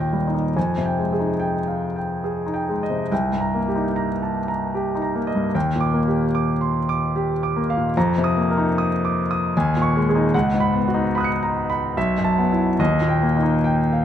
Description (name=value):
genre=classical, impressionist solo piano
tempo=68-76 BPM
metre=3/4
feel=rubato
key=unclear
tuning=A4 = 441 Hz
part: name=clear concert grand piano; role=solo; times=0.0-14.0 s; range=B1 to C#7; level=-19 LUFS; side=equal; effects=none
room=moderate scoring stage reverb, RT60 2.0 s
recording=close, detailed microphones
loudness=-19 LUFS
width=side -10 dB against mid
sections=0.0-14.0 A section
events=none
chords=0.0 Eb; 0.6 Fm9; 3.1 Cm7; 5.6 Ebmaj7; 8.0 F7sus4; 9.6 Eb7sus4; 10.3 C#9sus4; 12.0 B7sus4; 12.8 Eb